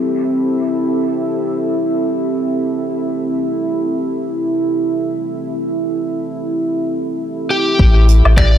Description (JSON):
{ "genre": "ambient dub", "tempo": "free time", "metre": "none", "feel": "none", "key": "unclear", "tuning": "A4 = 440 Hz", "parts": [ { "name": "deep dark ambient pad", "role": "sustained chords", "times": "0.0-8.6 s", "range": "C4 to E5", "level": "-17 LUFS", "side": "right 1 dB", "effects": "chorus, built-in reverb" }, { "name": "overdriven slide guitar", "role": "melody", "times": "7.5-8.6 s", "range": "G4 to D5", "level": "-17 LUFS", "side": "left 1 dB", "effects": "dub echo" }, { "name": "soft dub sub bass", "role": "bass", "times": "7.8-8.6 s", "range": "A1", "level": "-9 LUFS", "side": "equal", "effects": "none" }, { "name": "electronic kick drum", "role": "drums", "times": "7.8-8.5 s", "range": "none", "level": "-14 LUFS", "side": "equal", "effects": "none" }, { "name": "jazz brush drum kit", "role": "drums", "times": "8.1-8.5 s", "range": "finger snaps, hi-hat, woodblock", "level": "-19 LUFS", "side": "left 2 dB", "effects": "dub echo" } ], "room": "moderate concert hall reverb, RT60 1.9 s, small room ambience", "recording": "none", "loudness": "-15 LUFS", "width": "side -10 dB against mid", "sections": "0.0-7.8 A section", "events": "none", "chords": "0.0 C6; 7.8 Am7", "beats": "free time" }